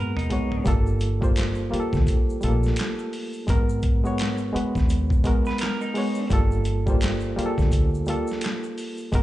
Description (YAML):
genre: R&B, neo-soul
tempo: 85 BPM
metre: 4/4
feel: swing 59% on 16ths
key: G minor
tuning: A4 = 440 Hz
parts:
  - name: electric guitar through a small old amp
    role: second line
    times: 0.0-0.6, 5.5-6.3 s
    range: Eb4 to Cb5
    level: -33 LUFS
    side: right 4 dB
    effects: slapback echo
  - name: barky reed electric piano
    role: accompaniment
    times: 0.0-9.2 s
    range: G3 to C#5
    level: -26 LUFS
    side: equal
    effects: overdrive, fast tremolo, slapback echo
  - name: boom bap sampler-style drum kit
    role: drums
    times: 0.2-9.2 s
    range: handclaps, hi-hat, kick drum, snare drum, toms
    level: -25 LUFS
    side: equal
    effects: none
  - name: deep dub fingered electric bass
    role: bass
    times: 0.7-9.2 s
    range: G1 to Eb2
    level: -24 LUFS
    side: equal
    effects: none
  - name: egg shaker and finger snaps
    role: percussion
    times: 0.7-9.2 s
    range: none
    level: -43 LUFS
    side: right 1 dB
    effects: none
room: little or no reverb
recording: live gig heard through the venue's PA, club reverb, nothing above 10.3 kHz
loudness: -21 LUFS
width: side -15 dB against mid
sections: 0.7-9.2 A section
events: drum fill 0.0-0.7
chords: 0.0 Abm9; 0.7 Gm9; 3.5 Abm9; 6.3 Gm9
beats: | 0.66 1.36 2.07 2.78 | 3.48 4.19 4.89 5.60 | 6.31 7.01 7.72 8.42 | 9.13